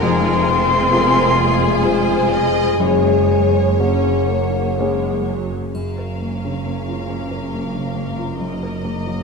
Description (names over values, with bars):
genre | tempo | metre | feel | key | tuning
cinematic, emotional film score for orchestra | 60-70 BPM | 3/4 | rubato | Gb lydian | A4 = 435 Hz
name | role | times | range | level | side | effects
warm studio violin section | melody | 0.0-9.2 s | Ab4 to F5 | -27 LUFS | left 3 dB | none
concert flute | second line | 0.0-5.3 s | Gb5 to C6 | -21 LUFS | left 2 dB | none
rich studio violin section | second line | 0.0-9.2 s | Ab4 to Ab5 | -28 LUFS | left 1 dB | none
clear baby grand piano | accompaniment | 0.0-9.2 s | F1 to Bb4 | -24 LUFS | left 2 dB | none
dark studio viola section | accompaniment | 0.0-9.2 s | F3 to Ab4 | -26 LUFS | right 1 dB | none
mellow French horn section | sustained chords | 0.0-5.4 s | Ab3 to Ab4 | -21 LUFS | left 5 dB | none
concert harp | arpeggios | 0.0-9.2 s | F2 to Ab4 | -28 LUFS | left 6 dB | none
warm studio cello section | bass | 0.0-9.2 s | Gb2 to C4 | -28 LUFS | right 2 dB | none
warm studio double bass section | bass | 0.0-9.2 s | F1 to Gb1 | -23 LUFS | right 4 dB | none
triangle | percussion | 5.7-7.5 s | none | -52 LUFS | left 1 dB | none
room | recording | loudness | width
wet scoring stage reverb, RT60 1.7 s | dark, warm production | -16 LUFS | side -4 dB against mid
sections
0.0-5.8 A section; 5.8-9.2 B section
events
none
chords
0.0 Fm; 2.8 Gbadd9; 5.8 Gbmaj7; 8.4 Ebm/Gb